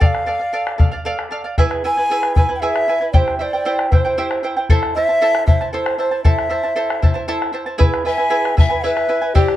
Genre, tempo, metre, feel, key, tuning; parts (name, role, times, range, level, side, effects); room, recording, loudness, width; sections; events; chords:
andean folk, Andean ensemble; 77 BPM (dotted quarters); 6/8; straight; A4 = 440 Hz
breathy large quena; melody; 0.0-9.6 s; C5 to A5; -19 LUFS; right 1 dB
charango; accompaniment; 0.0-9.6 s; E4 to A5; -21 LUFS; right 2 dB
bombo; percussion; 0.0-9.6 s; -16 LUFS; left 1 dB
bright polished pan flute; second line; 8.1-9.6 s; G4 to E5; -21 LUFS; left 6 dB
light reverb; dark, warm production; -15 LUFS; side -13 dB against mid
0.0-7.8 A section; 7.8-9.6 A section
0.0 Dm; 1.6 E; 3.1 C; 4.7 Am; 7.8 E